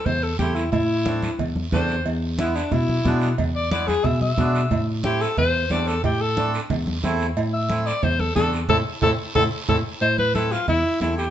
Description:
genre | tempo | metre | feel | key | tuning
latin, cumbia | 181 BPM | 4/4 | straight | A harmonic minor | A4 = 441 Hz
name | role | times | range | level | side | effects
breathy alto saxophone | melody | 0.0-11.3 s | D4 to E5 | -23 LUFS | left 2 dB | none
bell-like tine electric piano | bass | 0.1-11.3 s | E2 to B2 | -24 LUFS | equal | none
congas | percussion | 0.1-11.2 s | none | -27 LUFS | right 2 dB | none
cowbell and timbales | percussion | 0.1-11.2 s | none | -33 LUFS | right 6 dB | none
guiro | percussion | 0.1-11.3 s | none | -37 LUFS | right 4 dB | none
accordion | accompaniment | 0.4-11.3 s | G#3 to E4 | -30 LUFS | right 4 dB | none
room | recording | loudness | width
moderate stone room reverb, RT60 1.1 s | band playing live in one room, nothing above 8.0 kHz | -19 LUFS | side -10 dB against mid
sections
0.0-10.0 A section; 10.0-11.3 B section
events
alto saxophone solo 0.0-10.0; band accent 8.7-10.0; drum fill 9.2-10.0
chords
0.0 Am; 2.1 E7; 4.7 Am

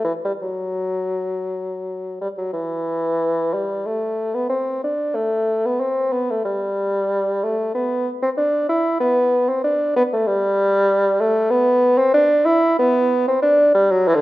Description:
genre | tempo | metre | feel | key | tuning
classical, baroque-style fantasia for unaccompanied bassoon | 82-96 BPM | 3/4 | rubato | G major | A4 = 442 Hz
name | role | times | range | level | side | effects
mellow bassoon | solo | 0.0-14.2 s | D3 to E4 | -17 LUFS | equal | none
room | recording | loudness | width
wet recital hall reverb, RT60 1.5 s | dark, warm production | -17 LUFS | side -17 dB against mid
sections
0.0-2.5 A section; 2.5-14.2 B section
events
none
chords
none

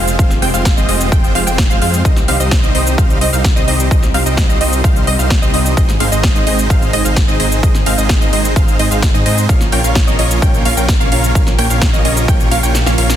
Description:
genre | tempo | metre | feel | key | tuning
EDM, festival progressive house | 129 BPM | 4/4 | straight | Ab major | A4 = 440 Hz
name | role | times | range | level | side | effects
lush unison pad | sustained chords | 0.0-13.2 s | C3 to Bb4 | -25 LUFS | equal | chorus, sidechain pumping
wide unison pluck | arpeggios | 0.0-13.2 s | Eb5 to G5 | -22 LUFS | equal | sidechain pumping, ping-pong delay
dense compressed supersaw | riff | 0.0-13.2 s | G3 to G5 | -18 LUFS | right 1 dB | sidechain pumping, ping-pong delay
detuned saw bass | bass | 0.0-13.2 s | F1 to Ab2 | -17 LUFS | equal | sidechain pumping
big-room dance drum kit | drums | 0.1-13.2 s | hi-hat, ride cymbal, shaker, snare drum | -20 LUFS | equal | none
electronic kick drum | drums | 0.2-12.4 s | none | -13 LUFS | equal | none
room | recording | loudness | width
little or no reverb | dense, heavily limited modern master | -10 LUFS | side -11 dB against mid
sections
0.0-13.2 A section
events
kick drops out 12.7-13.2; drum fill 12.7-13.2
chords
0.0 Fm; 2.0 Cm; 5.8 Ab; 9.5 Bbm

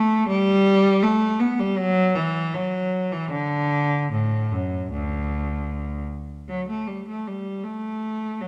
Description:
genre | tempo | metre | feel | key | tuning
classical, baroque-style suite movement for unaccompanied cello | 74-81 BPM | 4/4 | rubato | D major | A4 = 436 Hz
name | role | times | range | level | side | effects
rich cello | solo | 0.0-8.5 s | D2 to B3 | -23 LUFS | equal | none
room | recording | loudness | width
moderate recital hall reverb, RT60 1.5 s | dark, warm production | -23 LUFS | mono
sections
0.0-6.5 A section; 6.5-8.5 A section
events
none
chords
none

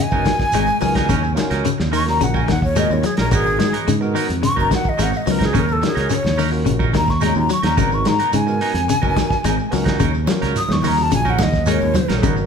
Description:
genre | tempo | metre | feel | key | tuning
afrobeat | 108 BPM | 4/4 | straight | Eb minor | A4 = 440 Hz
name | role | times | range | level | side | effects
breathy jazz flute | melody | 0.0-12.2 s | Ab4 to Eb6 | -21 LUFS | left 1 dB | none
semi-hollow electric guitar | arpeggios | 0.0-12.5 s | Db3 to Ab3 | -23 LUFS | left 7 dB | none
barky tine electric piano | accompaniment | 0.1-12.5 s | Cb4 to Db5 | -28 LUFS | right 1 dB | overdrive
semi-hollow electric guitar | stabs | 0.1-12.4 s | Gb3 to Bb4 | -27 LUFS | right 5 dB | none
fingered electric bass | bass | 0.1-12.5 s | Gb1 to Ab2 | -21 LUFS | right 1 dB | none
warm soul drum kit | drums | 0.1-12.4 s | hi-hat, kick drum, snare drum | -24 LUFS | right 1 dB | none
shekere | percussion | 0.1-12.5 s | none | -29 LUFS | right 3 dB | none
congas | percussion | 10.0-12.4 s | none | -24 LUFS | right 3 dB | none
room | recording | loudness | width
moderate large studio reverb, RT60 1.4 s | band playing live in one room | -15 LUFS | side -6 dB against mid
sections
0.0-12.5 A section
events
flute solo 0.0-12.5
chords
0.0 Abm9; 1.1 Ebm7; 3.3 Abm9; 5.5 Ebm7; 7.8 Abm9; 10.0 Ebm7

